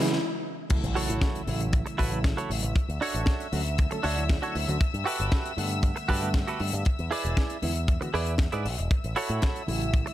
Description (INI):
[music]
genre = nu-disco, nu disco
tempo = 117 BPM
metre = 4/4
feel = straight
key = A major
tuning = A4 = 440 Hz
[part]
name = bright reed electric piano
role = accompaniment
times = 0.0-10.1 s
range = C#3 to F#5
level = -33 LUFS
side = right 1 dB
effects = fast tremolo, slapback echo
[part]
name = dark studio string section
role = sustained chords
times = 0.0-10.1 s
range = E5 to E6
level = -37 LUFS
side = left 3 dB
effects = sidechain pumping
[part]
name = tight funk drum kit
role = drums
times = 0.0-10.1 s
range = crash cymbal, hi-hat, snare drum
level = -35 LUFS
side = left 2 dB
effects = none
[part]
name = riser and impact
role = sound effects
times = 0.0-2.8 s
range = none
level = -36 LUFS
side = equal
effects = none
[part]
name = picked electric bass with an envelope filter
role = bass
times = 0.7-10.0 s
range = E1 to A2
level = -30 LUFS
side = equal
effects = none
[part]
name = kick drum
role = drums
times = 0.7-10.0 s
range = none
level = -25 LUFS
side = equal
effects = high-pass filter on kick, high-pass filter on snare, high-pass filter on room
[part]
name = direct-recorded clean electric guitar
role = riff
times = 1.0-10.1 s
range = D4 to D5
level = -31 LUFS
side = right 4 dB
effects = analog chorus, slapback echo
[sound]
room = light reverb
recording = none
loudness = -25 LUFS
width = side -13 dB against mid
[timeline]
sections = 0.7-10.1 A section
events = drum fill 0.0; riser 0.0; stop 0.2-0.7; drop 0.7-10.1; impact 0.7-2.8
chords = 0.0 E; 0.7 A6; 2.8 Dmaj7; 4.8 Gmaj9; 6.9 E7; 8.9 A6